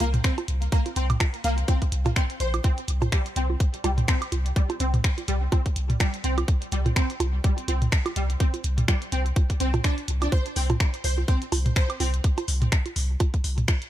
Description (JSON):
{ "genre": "minimal techno", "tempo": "125 BPM", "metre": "4/4", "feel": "swing 57% on 16ths", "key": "unclear", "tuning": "A4 = 439 Hz", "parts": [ { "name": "resonant blip pluck", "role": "riff", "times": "0.0-12.1 s", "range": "G3 to C5", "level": "-31 LUFS", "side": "equal", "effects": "ensemble chorus, sidechain pumping, digital delay" }, { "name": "punchy sub bass", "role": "bass", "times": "0.0-13.6 s", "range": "Bb1 to C2", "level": "-25 LUFS", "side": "equal", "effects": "sidechain pumping" }, { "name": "minimal click drum kit", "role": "drums", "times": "0.0-13.9 s", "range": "finger snaps, hi-hat", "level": "-31 LUFS", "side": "equal", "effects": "none" }, { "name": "electronic bongos, toms and woodblock", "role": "percussion", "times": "0.0-13.8 s", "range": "none", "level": "-29 LUFS", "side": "right 2 dB", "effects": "ping-pong delay" }, { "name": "electronic kick drum", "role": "drums", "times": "0.2-13.8 s", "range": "none", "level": "-22 LUFS", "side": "equal", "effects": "overdrive" } ], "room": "little or no reverb", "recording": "none", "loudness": "-22 LUFS", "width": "side -13 dB against mid", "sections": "0.0-13.9 A section", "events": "none", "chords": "0.0 C5", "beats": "0.24 | 0.72 1.20 1.68 2.16 | 2.64 3.12 3.60 4.08 | 4.56 5.04 5.52 6.00 | 6.48 6.96 7.44 7.92 | 8.40 8.88 9.36 9.84 | 10.32 10.80 11.28 11.76 | 12.24 12.72 13.20 13.68" }